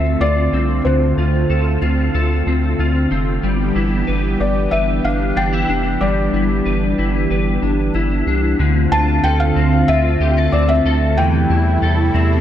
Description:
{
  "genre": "dream pop",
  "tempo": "93 BPM",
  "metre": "4/4",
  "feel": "straight",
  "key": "D dorian",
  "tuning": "A4 = 440 Hz",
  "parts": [
    { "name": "felt-muted upright piano", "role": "melody", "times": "0.0-12.1 s", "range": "C5 to A5", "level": "-21 LUFS", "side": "left 2 dB", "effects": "digital delay" },
    { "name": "warm analog pad", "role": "sustained chords", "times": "0.0-12.4 s", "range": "C3 to G4", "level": "-21 LUFS", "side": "right 2 dB", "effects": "chorus" },
    { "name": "electric guitar at the edge of break-up", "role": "arpeggios", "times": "0.0-12.4 s", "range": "D3 to B4", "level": "-20 LUFS", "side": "left 2 dB", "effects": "ensemble chorus, digital delay" },
    { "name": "round analog bass", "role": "bass", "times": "0.0-12.4 s", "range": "F1 to E2", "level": "-18 LUFS", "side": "right 1 dB", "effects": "none" }
  ],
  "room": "moderate concert hall reverb, RT60 2.5 s",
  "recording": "none",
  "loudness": "-14 LUFS",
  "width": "side -10 dB against mid",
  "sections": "0.0-8.6 A section; 8.6-12.4 B section",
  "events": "none",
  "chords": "0.0 Dm7; 3.4 G6; 8.6 Dm7; 11.2 Am7/E",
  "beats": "0.20 | 0.85 1.50 2.14 2.79 | 3.43 4.08 4.72 5.37 | 6.01 6.66 7.30 7.95 | 8.59 9.24 9.88 10.53 | 11.17 11.82"
}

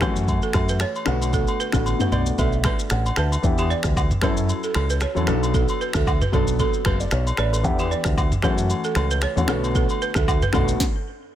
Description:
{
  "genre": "afrobeats",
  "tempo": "114 BPM",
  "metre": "4/4",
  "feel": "swing 55% on 16ths",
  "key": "unclear",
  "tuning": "A4 = 440 Hz",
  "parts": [
    { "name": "dark baby grand piano", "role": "accompaniment", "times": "0.0-10.8 s", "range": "D3 to A5", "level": "-26 LUFS", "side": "left 4 dB", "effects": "none" },
    { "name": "balafon", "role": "riff", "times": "0.0-10.6 s", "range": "G4 to D5", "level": "-28 LUFS", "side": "right 8 dB", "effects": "ping-pong delay" },
    { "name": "fingered electric bass with an envelope filter", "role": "bass", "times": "0.0-10.7 s", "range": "F#1 to F#2", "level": "-23 LUFS", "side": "equal", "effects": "none" },
    { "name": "afro-pop drum kit", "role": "drums", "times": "0.0-10.9 s", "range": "finger snaps, kick drum, rim click, shaker, snare drum, toms", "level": "-24 LUFS", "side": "equal", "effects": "none" },
    { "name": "agogo bells and woodblock", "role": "percussion", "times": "0.0-10.7 s", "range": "none", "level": "-32 LUFS", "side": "left 2 dB", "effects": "none" }
  ],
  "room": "small room reverb",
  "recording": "none",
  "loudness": "-19 LUFS",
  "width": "side -11 dB against mid",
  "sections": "0.0-3.4 A section; 3.4-11.3 B section",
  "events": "grand piano fill 1.9-3.4; stop 10.8-11.3",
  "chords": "0.0 F#m7; 1.1 Bm7; 3.4 Em7; 4.2 F#m7; 5.3 Bm7; 7.6 Em7; 8.4 F#m7; 9.5 Bm7",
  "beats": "0.28 0.81 | 1.33 1.86 2.38 2.91 | 3.44 3.96 4.49 5.02 | 5.54 6.07 6.59 7.12 | 7.65 8.17 8.70 9.23 | 9.75 10.28 10.80"
}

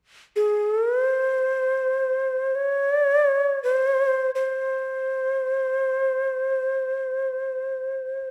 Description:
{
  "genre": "japanese traditional, Japanese chamber music",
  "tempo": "free time",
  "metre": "none",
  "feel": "none",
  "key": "unclear",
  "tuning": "A4 = 441 Hz",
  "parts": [
    { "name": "breathy shakuhachi", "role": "solo", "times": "0.4-8.3 s", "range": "C5 to Db5", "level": "-24 LUFS", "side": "equal", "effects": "none" }
  ],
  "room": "moderate concert hall reverb, RT60 1.7 s",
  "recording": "dark, warm production",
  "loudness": "-24 LUFS",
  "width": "mono",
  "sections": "0.0-8.3 A section",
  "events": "none",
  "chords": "none",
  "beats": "free time"
}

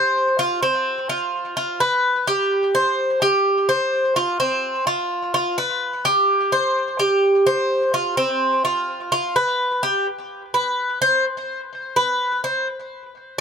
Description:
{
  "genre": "latin",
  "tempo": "127 BPM",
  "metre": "4/4",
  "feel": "straight",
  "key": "unclear",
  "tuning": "A4 = 442 Hz",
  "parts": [
    { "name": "Cuban tres", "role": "solo", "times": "0.0-13.4 s", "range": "C4 to C5", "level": "-18 LUFS", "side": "equal", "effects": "tape echo" }
  ],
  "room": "light reverb",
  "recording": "close, detailed microphones",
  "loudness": "-18 LUFS",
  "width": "side -6 dB against mid",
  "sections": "0.0-10.1 A section; 10.1-13.4 B section",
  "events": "Cuban tres solo 10.1-13.4",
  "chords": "none",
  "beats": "0.15 | 0.62 1.09 1.56 2.04 | 2.51 2.98 3.45 3.92 | 4.40 4.87 5.34 5.81 | 6.29 6.76 7.23 7.70 | 8.18 8.65 9.12 9.60 | 10.07 10.54 11.01 11.49 | 11.96 12.44 12.91 13.38"
}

